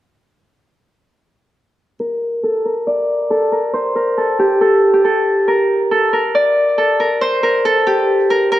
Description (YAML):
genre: hip hop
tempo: 138 BPM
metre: 4/4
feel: half-time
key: G minor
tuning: A4 = 440 Hz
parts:
  - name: Celtic harp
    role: melody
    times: 2.0-8.6 s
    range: G4 to D5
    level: -13 LUFS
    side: equal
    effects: low-pass filter
room: light reverb, studio reverb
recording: none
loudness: -13 LUFS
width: side -14 dB against mid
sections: 2.0-8.6 A section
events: filter sweep on harp 2.0-8.6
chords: none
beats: | 2.00 2.43 2.87 3.30 | 3.74 4.17 4.61 5.04 | 5.48 5.91 6.35 6.78 | 7.21 7.65 8.09 8.52